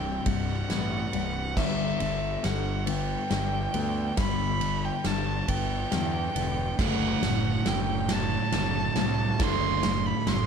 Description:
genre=post-rock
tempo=46 BPM (dotted quarters)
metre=6/8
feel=straight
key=unclear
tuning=A4 = 441 Hz
part: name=rich violin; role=melody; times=0.0-10.5 s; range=E5 to C6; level=-32 LUFS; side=right 3 dB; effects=slapback echo
part: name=clean electric guitar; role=arpeggios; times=0.0-10.5 s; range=C2 to D4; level=-35 LUFS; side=left 4 dB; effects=spring reverb, slapback echo
part: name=overdriven semi-hollow guitar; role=riff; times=0.0-10.5 s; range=C2 to G3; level=-32 LUFS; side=left 9 dB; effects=phaser
part: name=fuzz picked electric bass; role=bass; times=0.0-10.5 s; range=C1 to E2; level=-31 LUFS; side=right 1 dB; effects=overdrive
part: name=huge arena drum kit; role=drums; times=0.3-10.5 s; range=crash cymbal, kick drum, ride cymbal, snare drum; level=-31 LUFS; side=equal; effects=none
part: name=thick fuzz guitar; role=riff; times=6.8-10.5 s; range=D2 to D3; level=-30 LUFS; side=right 12 dB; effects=distortion
room=small room ambience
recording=dark, warm production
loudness=-25 LUFS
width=side -6 dB against mid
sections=0.0-10.5 A section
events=build-up 0.0-10.5; drum fill 0.0-10.5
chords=0.0 Cmaj7(no3); 1.6 G; 6.8 D7/F#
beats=0.26 | 1.57 2.88 | 4.18 5.49 | 6.79 8.10 | 9.40

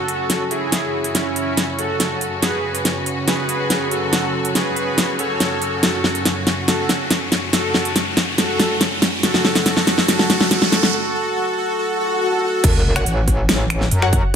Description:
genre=heavy wobble dubstep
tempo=141 BPM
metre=4/4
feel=half-time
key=F# minor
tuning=A4 = 440 Hz
part: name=soft supersaw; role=melody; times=0.0-12.6 s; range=C#4 to C#5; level=-22 LUFS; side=right 1 dB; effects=dub echo
part: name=clear symphonic string section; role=sustained chords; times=0.0-10.9 s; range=F#2 to F#4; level=-25 LUFS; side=equal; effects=sidechain pumping
part: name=riser, swell and sub drop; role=sound effects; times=1.3-14.3 s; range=none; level=-27 LUFS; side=left 1 dB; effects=none
part: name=big-room dance drum kit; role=drums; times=0.1-14.2 s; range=crash cymbal, finger snaps, hi-hat, snare drum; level=-18 LUFS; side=equal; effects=none
part: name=metallic wobble bass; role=bass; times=12.6-14.2 s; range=F#1 to F#2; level=-18 LUFS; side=equal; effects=chorus, overdrive
part: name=electronic kick drum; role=drums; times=12.6-14.2 s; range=none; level=-18 LUFS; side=equal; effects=none
part: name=orchestra-hit-like synth stab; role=stabs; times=13.0-14.1 s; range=F#4 to F#5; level=-23 LUFS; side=left 3 dB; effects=built-in reverb, dub echo
room=moderate digital room reverb, RT60 1.0 s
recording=none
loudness=-16 LUFS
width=side -7 dB against mid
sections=0.0-12.6 A section; 12.6-14.4 B section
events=build-up 0.0-12.6; drum fill 0.0-10.9; riser 1.3-10.9; break 10.9-12.6; swell 11.9-12.6; drop 12.6-14.4; impact 12.6-14.3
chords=0.0 F#5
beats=0.30 | 0.72 1.15 1.57 2.00 | 2.42 2.85 3.28 3.70 | 4.13 4.55 4.98 5.40 | 5.83 6.25 6.68 7.11 | 7.53 7.96 8.38 8.81 | 9.23 9.66 10.08 10.51 | 10.94 11.36 11.79 12.21 | 12.64 13.06 13.49 13.91 | 14.34

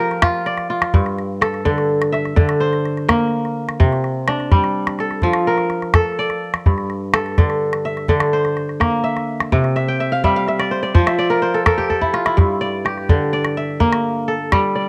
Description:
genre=west african traditional, West African string and xylophone music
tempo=84 BPM (dotted quarters)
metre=12/8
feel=straight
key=G dorian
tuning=A4 = 440 Hz
part: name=kora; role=arpeggios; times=0.0-14.9 s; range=G2 to G5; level=-20 LUFS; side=equal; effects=cassette tape
part: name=calabash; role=percussion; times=0.1-14.6 s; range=none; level=-19 LUFS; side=equal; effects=none
room=light reverb, small room ambience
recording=home recording on cassette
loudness=-18 LUFS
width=mono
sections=0.9-12.4 A section; 12.4-14.9 B section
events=kora fill 9.8-12.4; drum fill 11.8-12.4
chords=0.0 Bb6/F; 0.9 Gm; 3.8 C5; 5.2 F; 6.7 Gm; 9.5 C; 10.9 F; 12.4 Gm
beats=0.23 | 0.94 1.65 2.37 3.08 | 3.80 4.51 5.23 5.94 | 6.66 7.37 8.09 8.80 | 9.52 10.23 10.95 11.66 | 12.38 13.09 13.80 14.52

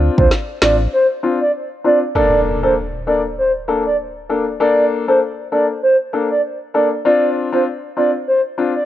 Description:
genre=dancehall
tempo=98 BPM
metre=4/4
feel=swing 56% on 16ths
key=unclear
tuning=A4 = 442 Hz
part: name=warm concert grand piano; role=accompaniment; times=0.0-8.7 s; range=Bb3 to A4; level=-18 LUFS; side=left 4 dB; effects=none
part: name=sub bass with octave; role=bass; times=0.0-0.9 s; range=A1 to D2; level=-16 LUFS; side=equal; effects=none
part: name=hollow clarinet-like synth lead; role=melody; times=0.2-8.9 s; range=C5 to D5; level=-16 LUFS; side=right 1 dB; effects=chorus
part: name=afro-pop drum kit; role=drums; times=0.2-0.8 s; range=kick drum, rim click, snare drum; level=-16 LUFS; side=equal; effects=none
part: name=impact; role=sound effects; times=2.2-4.6 s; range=none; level=-26 LUFS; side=equal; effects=none
room=light reverb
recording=worn, warbling old tape, cassette tape, warbly pitch drift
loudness=-14 LUFS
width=side -12 dB against mid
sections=0.0-2.2 A section; 2.2-8.9 B section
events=break 0.9-2.2; impact 2.2-4.6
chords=0.0 Dm7; 2.2 Bbmaj7; 7.0 Dm7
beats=0.32 0.93 1.54 | 2.15 2.76 3.38 3.99 | 4.60 5.21 5.83 6.44 | 7.05 7.66 8.28

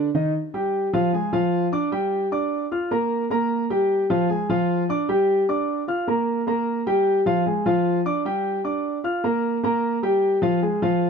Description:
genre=latin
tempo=152 BPM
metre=4/4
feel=straight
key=unclear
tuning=A4 = 440 Hz
part: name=dark concert grand piano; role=solo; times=0.0-11.1 s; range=Eb3 to F6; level=-20 LUFS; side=equal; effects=none
room=light reverb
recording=close, detailed microphones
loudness=-20 LUFS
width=side -6 dB against mid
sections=0.3-11.1 A section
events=none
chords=0.3 Fsus2; 1.1 Fm; 1.9 G5; 2.7 Bb5; 3.5 Fsus24; 4.3 Fm; 5.1 G5; 5.9 Bb5; 6.7 Fsus24; 7.5 Fm; 8.2 G5; 9.0 Bb5; 9.8 Fsus24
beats=| 0.34 0.73 1.13 1.52 | 1.92 2.31 2.71 3.10 | 3.50 3.90 4.29 4.69 | 5.08 5.48 5.87 6.27 | 6.67 7.06 7.46 7.85 | 8.25 8.64 9.04 9.44 | 9.83 10.23 10.62 11.02

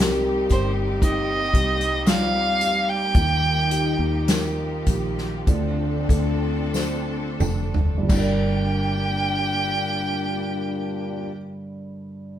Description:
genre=pop ballad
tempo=43-59 BPM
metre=4/4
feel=straight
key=G minor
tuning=A4 = 439 Hz
part: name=mellow French horn section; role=second line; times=0.0-11.3 s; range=Bb2 to G4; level=-29 LUFS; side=left 4 dB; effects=none
part: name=felt-muted upright piano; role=accompaniment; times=0.0-12.4 s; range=G2 to D5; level=-27 LUFS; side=right 2 dB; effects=none
part: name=clear studio string section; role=sustained chords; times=0.0-11.3 s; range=F3 to A4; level=-32 LUFS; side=left 1 dB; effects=none
part: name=fingered electric bass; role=bass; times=0.0-11.3 s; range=F1 to Eb2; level=-27 LUFS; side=equal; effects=none
part: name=unplugged drum kit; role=drums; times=0.0-8.4 s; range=crash cymbal, hi-hat, kick drum, snare drum, toms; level=-22 LUFS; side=equal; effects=none
part: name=warm violin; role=melody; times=0.5-11.3 s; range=C5 to G5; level=-24 LUFS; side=right 1 dB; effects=none
part: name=tambourine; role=percussion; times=0.5-8.8 s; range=none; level=-40 LUFS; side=left 4 dB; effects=none
room=moderate stone room reverb, RT60 1.0 s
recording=band playing live in one room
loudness=-20 LUFS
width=side -11 dB against mid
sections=0.0-8.1 A section; 8.1-12.4 B section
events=slowing down 0.0-8.1; drum fill 6.7-8.1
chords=0.0 Cm7; 3.2 Ebadd9; 5.5 Dm7; 8.1 Gm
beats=0.00 1.02 2.07 | 3.15 4.28 5.47 6.74 | 8.10 9.51 10.91 12.32

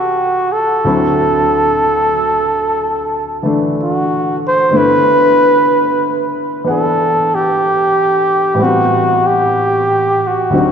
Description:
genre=jazz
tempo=62 BPM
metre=4/4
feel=swing 67% on 8ths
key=G major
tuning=A4 = 439 Hz
part: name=warm flugelhorn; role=melody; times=0.0-10.7 s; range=F#4 to C5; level=-12 LUFS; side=right 1 dB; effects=none
part: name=warm upright piano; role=accompaniment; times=0.0-10.7 s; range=C2 to F#5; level=-17 LUFS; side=left 1 dB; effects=none
room=wet cathedral reverb, RT60 4.6 s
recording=recorded in a church or concert hall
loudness=-11 LUFS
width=side -7 dB against mid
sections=0.0-10.7 A section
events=none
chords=0.0 Cmaj7; 0.8 D9; 4.7 G6; 8.6 Am7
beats=| 0.84 1.81 2.78 3.75 | 4.72 5.69 6.66 7.62 | 8.59 9.56 10.53

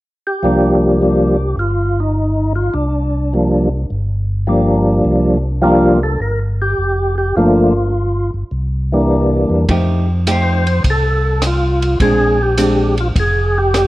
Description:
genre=soul jazz organ trio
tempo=104 BPM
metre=4/4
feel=swing 69% on 8ths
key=unclear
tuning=A4 = 440 Hz
part: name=percussive tonewheel organ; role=melody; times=0.3-13.9 s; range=E3 to C5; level=-15 LUFS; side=equal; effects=slow rotary speaker, overdrive, chorus vibrato
part: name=mellow tonewheel organ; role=bass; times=0.4-13.9 s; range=F1 to F2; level=-17 LUFS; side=equal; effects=chorus vibrato, slow rotary speaker
part: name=vintage hollow-body jazz guitar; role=accompaniment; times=9.7-12.9 s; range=F3 to G4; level=-18 LUFS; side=equal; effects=none
part: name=compact cocktail drum kit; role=drums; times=9.7-13.9 s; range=hi-hat, kick drum, ride cymbal, rim click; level=-21 LUFS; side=equal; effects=none
room=moderate large studio reverb, RT60 1.3 s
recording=worn, warbling old tape, cassette tape, warbly pitch drift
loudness=-13 LUFS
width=side -17 dB against mid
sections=0.4-9.7 A section; 9.7-13.9 B section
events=none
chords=0.4 C7sus4; 7.4 Gm7; 8.5 C7; 9.7 F9; 12.0 Bb9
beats=| 0.43 1.01 1.58 2.16 | 2.74 3.32 3.90 4.48 | 5.06 5.64 6.22 6.80 | 7.38 7.95 8.53 9.11 | 9.69 10.27 10.85 11.43 | 12.00 12.58 13.16 13.74

